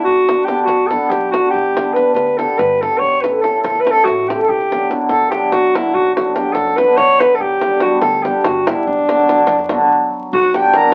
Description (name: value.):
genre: balkan folk, Balkan wedding band.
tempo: 287 BPM (eighths).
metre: 7/8.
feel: straight.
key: B minor.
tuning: A4 = 440 Hz.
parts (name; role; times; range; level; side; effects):
mellow alto saxophone; melody; 0.0-10.9 s; D4 to C#5; -16 LUFS; equal; none.
upright bass; bass; 0.1-10.7 s; G1 to F#2; -39 LUFS; equal; none.
davul; percussion; 0.1-10.8 s; none; -26 LUFS; equal; none.
cimbalom; accompaniment; 0.3-10.9 s; F#3 to B4; -20 LUFS; equal; none.
accordion; second line; 10.4-10.9 s; F#5 to A#5; -17 LUFS; equal; none.
room: wet small room reverb, RT60 0.5 s.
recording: very old 78 rpm record, vinyl crackle.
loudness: -15 LUFS.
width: mono.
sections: 0.0-10.3 A section.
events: stop 9.9-10.3.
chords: 0.0 Bm; 1.5 G; 3.0 A; 4.5 Bm; 7.4 G; 8.9 Bm.